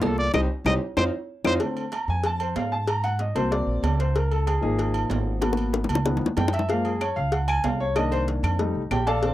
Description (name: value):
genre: Afro-Cuban jazz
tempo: 189 BPM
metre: 4/4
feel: straight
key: unclear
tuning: A4 = 439 Hz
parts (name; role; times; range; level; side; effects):
- breathy trumpet; melody; 0.0-1.5 s; A4 to Eb5; -26 LUFS; equal; none
- warm upright piano; accompaniment; 0.0-9.3 s; D3 to Bb5; -26 LUFS; left 2 dB; none
- upright bass; bass; 0.0-9.3 s; Ab1 to Ab2; -26 LUFS; equal; none
- bongos and cowbell; percussion; 0.0-9.3 s; none; -28 LUFS; left 4 dB; none
- timbales and agogo bells; percussion; 0.0-9.3 s; none; -31 LUFS; right 6 dB; none
- claves; percussion; 0.3-1.5, 7.0-9.1 s; none; -32 LUFS; left 5 dB; none
room: little or no reverb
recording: dry, close 1970s-style studio recording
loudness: -22 LUFS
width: side -14 dB against mid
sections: 0.0-1.6 A section; 1.6-9.3 A section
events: trumpet solo 0.0-1.6; band accent 0.3-1.6; drum fill 0.8-1.6, 5.4-6.7; upright piano solo 1.6-9.3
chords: 0.3 Cm; 1.0 F5; 1.6 F6; 2.9 Ab7; 4.2 Db69; 5.4 Abm7; 6.1 Db7; 6.7 Gbmaj7; 8.0 Cm7; 8.6 F7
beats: 0.03 | 0.34 0.66 0.98 1.29 | 1.61 1.93 2.25 2.56 | 2.88 3.20 3.52 3.83 | 4.15 4.47 4.79 5.11 | 5.42 5.74 6.06 6.37 | 6.69 7.01 7.33 7.64 | 7.96 8.28 8.59 8.91 | 9.23